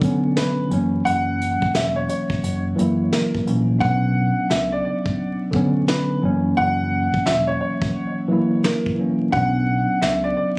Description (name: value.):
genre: hip hop, boom-bap hip-hop.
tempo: 87 BPM.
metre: 4/4.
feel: swing 63% on 16ths.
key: B harmonic minor.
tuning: A4 = 440 Hz.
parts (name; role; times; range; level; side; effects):
mellow tine electric piano; accompaniment; 0.0-10.6 s; D3 to E4; -20 LUFS; equal; medium stereo tremolo, cassette tape.
soft brush drum kit; drums; 0.0-10.2 s; hi-hat, kick drum, snare drum; -24 LUFS; equal; none.
warm upright piano; melody; 0.4-10.6 s; A#4 to F#5; -23 LUFS; equal; digital delay.
deep dub fingered electric bass; bass; 0.7-10.3 s; E1 to C#2; -25 LUFS; equal; none.
room: light reverb.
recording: recorded on a phone in the room, studio ambience, vinyl crackle, compression.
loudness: -18 LUFS.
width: side -27 dB against mid.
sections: 0.0-3.8 A section; 3.8-10.6 B section.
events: hi-hats muted 3.8-10.6.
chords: 0.0 Bmadd9; 0.7 F#7; 3.8 Bmadd9; 6.2 F#7; 9.3 Bmadd9.